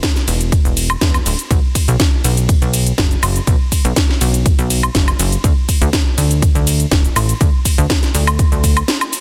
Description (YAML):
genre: progressive house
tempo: 122 BPM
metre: 4/4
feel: straight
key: B minor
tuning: A4 = 441 Hz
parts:
  - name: electronic kick drum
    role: drums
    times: 0.0-8.7 s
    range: none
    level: -17 LUFS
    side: equal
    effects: none
  - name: house drum kit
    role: drums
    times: 0.0-9.2 s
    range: cabasa, hi-hat, ride cymbal, snare drum, woodblock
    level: -21 LUFS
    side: equal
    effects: overdrive
  - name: plucky analog bass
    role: bass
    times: 0.3-8.8 s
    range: D1 to E2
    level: -18 LUFS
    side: equal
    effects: sidechain pumping
room: little or no reverb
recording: dense, heavily limited modern master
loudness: -15 LUFS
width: mono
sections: 0.0-9.2 A section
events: break 8.9-9.2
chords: none